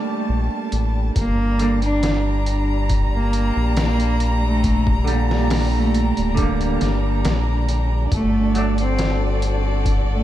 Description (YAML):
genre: trip hop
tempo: 69 BPM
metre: 4/4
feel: straight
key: G harmonic minor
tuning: A4 = 440 Hz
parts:
  - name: clean electric guitar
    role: accompaniment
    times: 0.0-8.7 s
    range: Bb2 to D4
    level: -25 LUFS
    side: right 3 dB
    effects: tremolo, tape echo
  - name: warm studio violin section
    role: sustained chords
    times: 0.0-10.2 s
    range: G3 to Bb5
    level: -27 LUFS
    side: left 1 dB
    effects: none
  - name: round analog bass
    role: bass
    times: 0.3-10.2 s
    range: D1 to Bb1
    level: -20 LUFS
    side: equal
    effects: none
  - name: trip hop sampler-style drum kit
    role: drums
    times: 0.7-10.1 s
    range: hi-hat, kick drum, snare drum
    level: -25 LUFS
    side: equal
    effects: none
  - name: rich cello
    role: melody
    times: 1.2-10.2 s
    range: A3 to D4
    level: -24 LUFS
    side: right 1 dB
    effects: tape echo
room: light reverb, digital ambience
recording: none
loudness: -17 LUFS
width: side -13 dB against mid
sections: 0.0-1.2 A section; 1.2-10.2 B section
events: filter sweep on clean electric guitar 0.0-1.2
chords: 0.0 Gmadd9; 1.2 Gm; 8.1 D/G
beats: 0.29 | 1.16 2.03 2.90 3.77 | 4.64 5.51 6.38 7.25 | 8.12 8.99 9.86